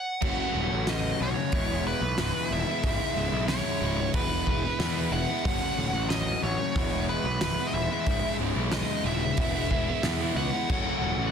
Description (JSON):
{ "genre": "quiet-loud alternative rock", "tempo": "92 BPM", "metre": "4/4", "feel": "straight", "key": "C# minor", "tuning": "A4 = 440 Hz", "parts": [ { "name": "nasal lead guitar with a parked wah", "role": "melody", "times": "0.0-11.3 s", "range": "B4 to F#5", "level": "-31 LUFS", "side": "equal", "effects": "overdrive" }, { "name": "overdriven electric guitar", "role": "riff", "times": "0.2-11.3 s", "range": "C#2 to F#4", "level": "-32 LUFS", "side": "left 13 dB", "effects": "none" }, { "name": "overdriven electric guitar", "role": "riff", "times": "0.2-11.3 s", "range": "C#2 to F#4", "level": "-32 LUFS", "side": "right 15 dB", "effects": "phaser" }, { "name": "fuzz picked electric bass", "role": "bass", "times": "0.2-11.3 s", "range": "C#1 to E2", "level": "-32 LUFS", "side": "equal", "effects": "overdrive" }, { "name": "loose indie drum kit", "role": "drums", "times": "0.2-10.8 s", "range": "crash cymbal, hi-hat, kick drum, snare drum", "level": "-31 LUFS", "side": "equal", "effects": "none" } ], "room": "small room reverb", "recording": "dense, heavily limited modern master", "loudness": "-25 LUFS", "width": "side -7 dB against mid", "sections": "0.2-11.3 A section", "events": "stop 0.0", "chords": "0.2 F#m; 1.5 E; 2.8 C#m; 4.1 E; 5.5 F#m; 6.8 C#m; 9.4 E; 10.7 F#m" }